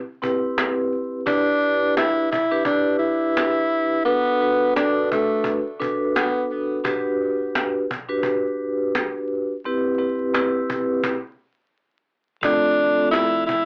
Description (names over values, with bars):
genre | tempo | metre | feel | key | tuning
hip hop, boom-bap hip-hop | 86 BPM | 4/4 | swing 55% on 16ths | E minor | A4 = 440 Hz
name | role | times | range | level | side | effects
vibraphone with soft mallets | accompaniment | 0.2-13.4 s | A3 to B4 | -25 LUFS | equal | high-pass filter, low-pass filter
cajon | drums | 0.2-13.7 s | none | -28 LUFS | equal | none
breathy tenor saxophone | melody | 1.3-6.5, 12.4-13.7 s | A3 to E4 | -23 LUFS | equal | high-pass filter, low-pass filter, tape echo
tonewheel organ | sustained chords | 12.4-13.7 s | F2 to A3 | -38 LUFS | equal | stopped rotary speaker, high-pass filter, low-pass filter
room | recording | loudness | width
moderate studio ambience, RT60 0.5 s | dry, gritty hardware recording, vinyl crackle, AM radio sound | -22 LUFS | mono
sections
0.0-12.4 A section; 12.4-13.7 B section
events
stop 11.0-12.4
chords
0.0 Cmaj7; 1.3 Em7; 4.1 Bm7; 6.8 Gmaj7; 9.6 Cmaj7; 12.4 F